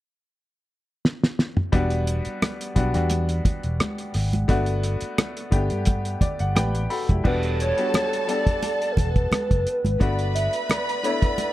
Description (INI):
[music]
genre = lush 1970s-style soul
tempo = 87 BPM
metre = 4/4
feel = swing 54% on 16ths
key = E minor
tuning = A4 = 439 Hz
[part]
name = cloth-damped thuddy drum kit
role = drums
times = 1.1-11.5 s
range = crash cymbal, hi-hat, kick drum, rim click, snare drum, toms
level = -23 LUFS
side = equal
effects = none
[part]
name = clear grand piano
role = accompaniment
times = 1.7-11.5 s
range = G3 to B5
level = -28 LUFS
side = left 2 dB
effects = none
[part]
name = vintage muted fingered electric bass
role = bass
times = 1.7-10.5 s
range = E1 to G2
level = -24 LUFS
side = equal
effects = none
[part]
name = congas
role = percussion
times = 2.4-11.5 s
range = none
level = -30 LUFS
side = right 1 dB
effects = none
[part]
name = warm studio violin section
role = second line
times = 7.2-11.5 s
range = A4 to B5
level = -29 LUFS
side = equal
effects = none
[part]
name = hollow square lead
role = melody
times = 7.3-11.5 s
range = A#4 to E5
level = -26 LUFS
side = right 1 dB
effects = chorus
[sound]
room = light reverb, small room ambience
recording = dark, warm production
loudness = -21 LUFS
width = side -15 dB against mid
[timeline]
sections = 0.0-1.7 A section; 1.7-7.2 B section; 7.2-11.5 C section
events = drum fill 1.0-1.7; grand piano fill 5.9-7.2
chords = 0.0 N.C.; 1.7 Em9; 4.5 Gmaj9; 7.2 Em9; 10.0 Gmaj9